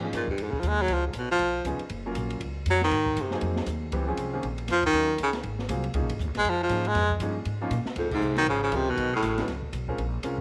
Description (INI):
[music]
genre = jazz, small-group swing and bop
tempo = 237 BPM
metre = 4/4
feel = swing 59% on 8ths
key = Db major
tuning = A4 = 442 Hz
[part]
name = warm concert grand piano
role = accompaniment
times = 0.0-10.4 s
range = Eb3 to Bb4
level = -36 LUFS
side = equal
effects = none
[part]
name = upright bass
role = bass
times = 0.0-10.4 s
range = Gb1 to Bb2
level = -34 LUFS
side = equal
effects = none
[part]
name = open jazz drum kit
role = drums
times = 0.1-10.4 s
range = crash cymbal, hi-hat, kick drum, ride cymbal, snare drum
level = -40 LUFS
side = equal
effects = none
[part]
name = clear baritone saxophone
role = melody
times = 0.2-9.5 s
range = F2 to Ab3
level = -28 LUFS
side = equal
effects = none
[part]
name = bright tenor saxophone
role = second line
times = 8.0-9.5 s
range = Ab2 to Gb3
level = -38 LUFS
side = equal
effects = none
[sound]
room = moderate plate reverb, RT60 1.6 s, small room reverb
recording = none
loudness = -27 LUFS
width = mono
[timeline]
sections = 0.0-8.0 A section; 8.0-10.4 B section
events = baritone saxophone solo 0.0-8.0; band accent 8.1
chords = 0.0 Db69; 0.9 Db9; 1.9 Gbmaj7; 2.9 Ab9; 3.9 Dbmaj7; 4.4 Bb5; 4.9 Ebm7; 5.4 Ab13; 5.9 Db69; 8.0 Dbmaj9; 9.0 Cb7sus2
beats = 0.13 0.39 0.64 | 0.89 1.15 1.40 1.65 | 1.90 2.16 2.41 2.66 | 2.92 3.17 3.42 3.67 | 3.93 4.18 4.43 4.68 | 4.94 5.19 5.44 5.69 | 5.95 6.20 6.45 6.70 | 6.96 7.21 7.46 7.71 | 7.96 8.22 8.47 8.72 | 8.98 9.23 9.48 9.73 | 9.99 10.24